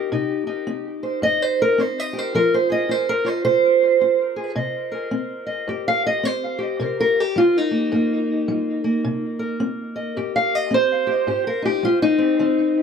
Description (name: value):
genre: acoustic country blues, solo or duo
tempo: 108 BPM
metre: 4/4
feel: swing 62% on 8ths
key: C minor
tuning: A4 = 436 Hz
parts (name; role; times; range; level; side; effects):
- fingerpicked steel-string acoustic guitar; solo; 0.0-12.8 s; G2 to F5; -18 LUFS; equal; tape echo
room: moderate small room reverb, RT60 0.6 s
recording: none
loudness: -18 LUFS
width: side -6 dB against mid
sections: 0.0-12.8 A section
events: steel-string acoustic guitar solo 0.0-12.8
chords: 0.0 Cm; 2.3 Fm; 4.6 Cm7; 11.3 Abmaj7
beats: | 0.11 0.67 1.23 1.78 | 2.34 2.90 3.45 4.01 | 4.57 5.13 5.68 6.24 | 6.80 7.36 7.92 8.47 | 9.03 9.59 10.15 10.71 | 11.27 11.83 12.39